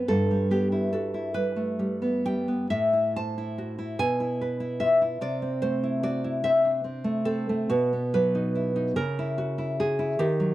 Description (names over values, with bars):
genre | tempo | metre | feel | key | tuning
romantic piece for solo classical guitar | 47 BPM (dotted quarters) | 6/8 | uneven beats, rubato | E minor | A4 = 440 Hz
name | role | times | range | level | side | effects
nylon-string guitar | solo | 0.0-10.5 s | G2 to A5 | -24 LUFS | equal | none
room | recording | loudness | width
studio reverb | dry, close 1970s-style studio recording | -24 LUFS | side -15 dB against mid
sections
0.0-10.5 A section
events
none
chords
0.1 Em/G; 2.7 Am; 4.0 E/B; 5.2 Am/C; 7.7 B; 9.0 F#7/C#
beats
| 0.08 1.34 | 2.70 3.99 | 5.21 6.45 | 7.71 8.98 | 10.21